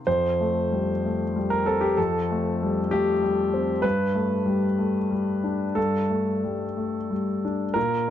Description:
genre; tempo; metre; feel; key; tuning
neoclassical minimalist piano; 60-66 BPM (dotted quarters); 6/8; rubato; unclear; A4 = 440 Hz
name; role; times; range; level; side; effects
warm concert grand piano; solo; 0.0-8.1 s; F2 to C5; -22 LUFS; left 1 dB; none
room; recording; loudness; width
light reverb; dark, warm production; -22 LUFS; side -10 dB against mid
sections
0.1-8.1 A section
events
none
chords
0.1 Fadd9; 3.8 Gadd9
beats
| 0.06 1.03 | 1.97 2.91 | 3.83 4.78 | 5.76 6.76 | 7.75

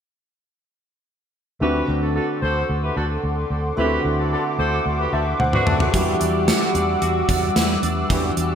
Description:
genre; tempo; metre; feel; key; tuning
1980s-style pop; 111 BPM; 4/4; straight; D mixolydian; A4 = 440 Hz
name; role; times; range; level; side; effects
warm concert grand piano; accompaniment; 1.6-8.6 s; D3 to A5; -24 LUFS; equal; lush chorus
warm analog pad; sustained chords; 1.6-8.6 s; G3 to E6; -25 LUFS; equal; chorus
mellow horn section; stabs; 1.6-5.8 s; C4 to C5; -26 LUFS; right 1 dB; digital delay
vintage muted fingered electric bass; bass; 1.6-8.6 s; D2 to E2; -24 LUFS; equal; none
gated 80s drum kit; drums; 5.4-8.5 s; hi-hat, kick drum, snare drum, toms; -22 LUFS; equal; gated reverb
twelve-string electric guitar; riff; 5.9-8.6 s; G3 to B4; -26 LUFS; right 4 dB; lush chorus, digital delay
room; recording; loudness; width
wet lush hall reverb, RT60 1.8 s, small room ambience; bright 1980s-style digital production; -18 LUFS; side -8 dB against mid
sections
1.6-8.6 A section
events
grand piano fill 4.9-5.9; drum fill 5.4-5.9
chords
1.6 D7; 5.9 Em9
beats
| 1.61 2.15 2.69 3.24 | 3.78 4.32 4.86 5.40 | 5.94 6.48 7.02 7.56 | 8.10

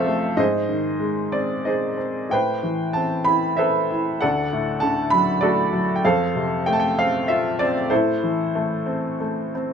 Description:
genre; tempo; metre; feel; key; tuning
classical, lyrical solo piano; 84-103 BPM; 3/4; rubato; A minor; A4 = 439 Hz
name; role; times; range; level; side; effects
bright upright piano; solo; 0.0-9.7 s; D2 to B5; -19 LUFS; equal; none
room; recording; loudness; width
light reverb; close, detailed microphones; -19 LUFS; side -7 dB against mid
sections
0.0-9.7 A section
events
none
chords
0.4 G#; 2.3 Amadd9; 4.2 D; 6.0 F; 7.9 Am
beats
| 0.37 1.01 1.66 | 2.31 2.96 3.59 | 4.22 4.81 5.41 | 6.03 6.66 7.28 | 7.90 8.53 9.20

